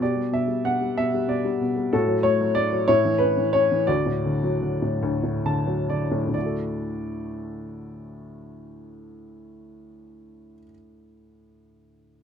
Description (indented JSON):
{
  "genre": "classical, lyrical solo piano",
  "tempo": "42-65 BPM (dotted quarters)",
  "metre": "6/8",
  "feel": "rubato",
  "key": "D major",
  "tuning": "A4 = 439 Hz",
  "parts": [
    { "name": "dark upright piano", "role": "solo", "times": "0.0-12.2 s", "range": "D2 to A5", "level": "-22 LUFS", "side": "left 1 dB", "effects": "none" }
  ],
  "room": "moderate small room reverb, RT60 0.6 s",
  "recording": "minimal, uncompressed stereo recording",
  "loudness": "-21 LUFS",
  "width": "side -7 dB against mid",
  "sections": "0.0-6.4 A section; 6.4-11.9 B section",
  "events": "slowing down 1.9-6.4; upright piano fill 5.0-6.4",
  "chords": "0.0 Em9/B; 1.9 A6; 2.9 A; 3.9 D",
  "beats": "| 0.01 0.98 | 1.94 2.88 | 3.88 5.02 | 6.35 7.73 | 9.09 10.46"
}